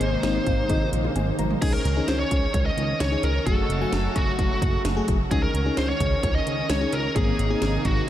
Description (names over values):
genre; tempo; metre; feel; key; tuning
synth-pop; 130 BPM; 4/4; straight; unclear; A4 = 440 Hz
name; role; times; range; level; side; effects
bluesy overdriven lead guitar; melody; 0.0-8.1 s; Gb4 to Eb5; -27 LUFS; equal; distortion, diffuse ambient delay
FM electric piano; accompaniment; 0.0-8.0 s; A3 to Bb5; -29 LUFS; left 4 dB; chorus
brassy analog pad; sustained chords; 0.0-8.1 s; C3 to Gb4; -30 LUFS; right 1 dB; chorus
chorused synth bass; bass; 0.0-8.0 s; Gb1 to Db2; -26 LUFS; equal; none
house drum kit; drums; 0.0-8.0 s; crash cymbal, hi-hat, kick drum, snare drum, toms; -27 LUFS; equal; none
room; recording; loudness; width
moderate huge ambient reverb, RT60 7.5 s; dreamy mix soaked in reverb; -21 LUFS; side -12 dB against mid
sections
0.0-1.6 A section; 1.6-8.1 B section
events
FM electric piano fill 0.2-1.6; drum fill 0.7-1.6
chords
0.0 Abadd9; 1.6 Dbsus2; 3.5 Gbmadd9; 5.3 Dbsus2; 7.2 Abadd9